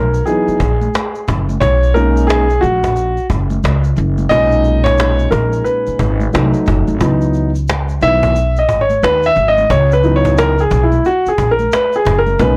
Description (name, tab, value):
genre	hip hop, jazz-hop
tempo	89 BPM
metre	4/4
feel	swing 62% on 16ths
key	C# dorian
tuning	A4 = 440 Hz
part	dark grand piano	accompaniment	0.0-12.6 s	A#2 to E5	-16 LUFS	equal	none
part	upright bass	bass	0.0-12.6 s	F#1 to D#2	-18 LUFS	equal	none
part	cajon	drums	0.1-12.6 s	none	-23 LUFS	equal	none
part	egg shaker and congas	percussion	0.1-12.6 s	none	-30 LUFS	equal	none
room	light reverb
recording	blown-out, overdriven recording, overdrive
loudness	-14 LUFS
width	mono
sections	0.0-7.0 A section; 7.0-12.6 B section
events	grand piano solo 0.0-7.0, 7.0-12.6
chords	0.0 C#m11 (rootless); 1.6 Bmaj13; 6.3 Cdim7; 7.0 C#m11